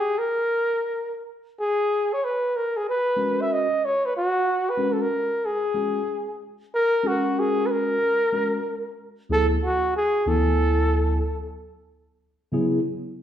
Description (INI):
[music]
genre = hip hop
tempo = 93 BPM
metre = 4/4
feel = swing 65% on 16ths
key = G# minor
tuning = A4 = 440 Hz
[part]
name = breathy flugelhorn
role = melody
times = 0.0-11.6 s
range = F#4 to E5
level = -22 LUFS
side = equal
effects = none
[part]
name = mellow tine electric piano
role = accompaniment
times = 3.2-12.8 s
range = D2 to G#5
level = -24 LUFS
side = equal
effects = phaser
[sound]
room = wet large studio reverb, RT60 1.3 s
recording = band playing live in one room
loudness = -21 LUFS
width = side -10 dB against mid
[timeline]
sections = 0.0-6.7 A section; 6.7-13.2 B section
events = none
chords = 0.0 N.C.; 1.6 G#m11; 6.7 F#; 9.3 D69; 11.9 C#m7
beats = 0.27 0.92 | 1.56 2.21 2.85 3.50 | 4.14 4.79 5.44 6.08 | 6.73 7.37 8.02 8.66 | 9.31 9.95 10.60 11.24 | 11.89 12.53